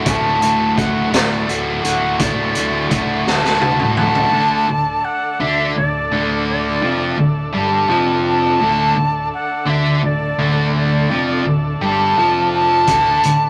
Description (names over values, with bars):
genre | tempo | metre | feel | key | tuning
psychedelic rock | 56 BPM (dotted quarters) | 6/8 | straight | D mixolydian | A4 = 439 Hz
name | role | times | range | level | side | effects
overdriven combo organ | sustained chords | 0.0-13.5 s | D3 to B4 | -30 LUFS | equal | none
overdriven electric guitar | riff | 0.0-13.5 s | D2 to F#4 | -20 LUFS | equal | none
bright reedy concert flute | melody | 0.1-13.5 s | D5 to A5 | -20 LUFS | equal | none
growling fingered electric bass | bass | 0.1-13.5 s | D1 to D2 | -30 LUFS | equal | overdrive
raw garage drum kit | drums | 0.1-4.3, 12.9-13.4 s | hi-hat, kick drum, snare drum, toms | -22 LUFS | equal | none
room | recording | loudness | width
wet club reverb, RT60 0.6 s | none | -17 LUFS | mono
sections
0.0-4.3 A section; 4.3-13.5 B section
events
drum fill 3.3-4.3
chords
0.0 D; 4.3 D5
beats
| 0.06 1.13 | 2.20 3.27 | 4.33 5.40 | 6.47 7.54 | 8.61 9.68 | 10.74 11.81 | 12.88